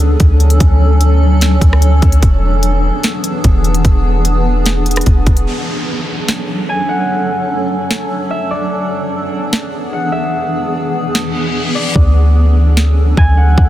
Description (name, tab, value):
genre	hip hop, atmospheric cloud-rap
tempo	148 BPM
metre	4/4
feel	half-time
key	D lydian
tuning	A4 = 440 Hz
part	granular cloud pad	sustained chords	0.0-13.7 s	E3 to A4	-17 LUFS	equal	built-in reverb, sidechain pumping
part	clean 808-style bass	bass	0.0-5.5, 12.0-13.7 s	E1 to D2	-10 LUFS	equal	none
part	trap drum kit	drums	0.0-13.7 s	hi-hat, kick drum, rim click, snare drum	-13 LUFS	equal	none
part	downlifter and reverse cymbal	sound effects	5.5-8.7, 11.3-12.0 s	none	-25 LUFS	left 2 dB	none
part	Celtic harp	melody	6.7-13.7 s	D5 to G#5	-20 LUFS	left 1 dB	low-pass filter, tape echo
room	digital ambience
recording	dense, heavily limited modern master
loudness	-11 LUFS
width	side -13 dB against mid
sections	0.0-5.5 A section; 5.5-12.0 B section; 12.0-13.7 C section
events	reverse cymbal 11.3-12.0; hi-hats muted 12.0-13.7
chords	0.0 Dmaj7; 2.2 E7; 5.5 Dmaj7; 8.7 E7; 12.0 Dmaj7